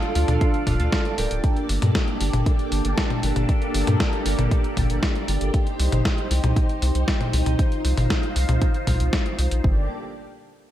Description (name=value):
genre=italo disco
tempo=117 BPM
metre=4/4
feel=straight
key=G minor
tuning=A4 = 440 Hz
part: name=string machine, full ensemble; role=sustained chords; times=0.0-9.9 s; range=Bb3 to D5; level=-27 LUFS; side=equal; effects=ensemble chorus, vintage 12-bit sampler grit
part: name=chorused polysynth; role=stabs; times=0.0-1.7 s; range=D4 to G5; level=-27 LUFS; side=right 4 dB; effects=digital delay
part: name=detuned 8-bit digital drum machine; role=drums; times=0.0-9.6 s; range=hi-hat, snare drum, toms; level=-25 LUFS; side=left 1 dB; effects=gated reverb
part: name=round analog bass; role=bass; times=0.2-9.9 s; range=D1 to G2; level=-22 LUFS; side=equal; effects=none
part: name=electronic kick drum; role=drums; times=0.4-9.7 s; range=none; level=-22 LUFS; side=equal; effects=none
room=little or no reverb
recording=none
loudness=-19 LUFS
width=side -12 dB against mid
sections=0.0-9.6 A section; 9.6-10.7 B section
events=none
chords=0.0 Dm; 1.4 Gmadd9; 5.5 Cm; 9.6 Gmadd9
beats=0.41 0.92 | 1.44 1.95 2.46 2.98 | 3.49 4.00 4.51 5.03 | 5.54 6.05 6.57 7.08 | 7.59 8.10 8.62 9.13 | 9.64